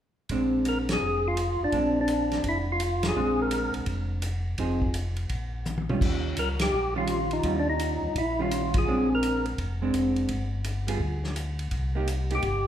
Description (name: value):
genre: soul jazz organ trio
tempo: 168 BPM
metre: 4/4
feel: swing 65% on 8ths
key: Bb mixolydian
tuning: A4 = 440 Hz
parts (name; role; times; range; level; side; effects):
- vintage hollow-body jazz guitar; accompaniment; 0.3-12.4 s; Eb3 to Ab4; -29 LUFS; right 2 dB; none
- mellow tonewheel organ; bass; 0.3-12.7 s; F1 to Eb2; -30 LUFS; equal; chorus vibrato, slow rotary speaker
- warm soul drum kit; drums; 0.3-12.5 s; crash cymbal, hi-hat, kick drum, ride cymbal, snare drum, toms; -32 LUFS; equal; none
- percussive tonewheel organ; melody; 0.7-3.7, 6.4-9.5, 12.3-12.7 s; D4 to Bb4; -27 LUFS; left 1 dB; slow rotary speaker, overdrive
room: wet recital hall reverb, RT60 1.4 s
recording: recorded in a church or concert hall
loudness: -24 LUFS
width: side -10 dB against mid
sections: 0.3-12.7 A section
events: band accent 0.8, 3.0, 6.5, 8.7; drum fill 5.7-6.0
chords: 0.3 Bb9; 4.6 Fm7; 5.3 Eb9; 8.9 Bb9; 10.3 G5; 11.7 Cm7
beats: | 0.30 0.66 1.02 1.38 | 1.73 2.09 2.45 2.80 | 3.16 3.52 3.88 4.23 | 4.59 4.94 5.30 5.66 | 6.01 6.37 6.73 7.08 | 7.44 7.80 8.15 8.51 | 8.87 9.22 9.58 9.94 | 10.29 10.65 11.01 11.36 | 11.72 12.08 12.43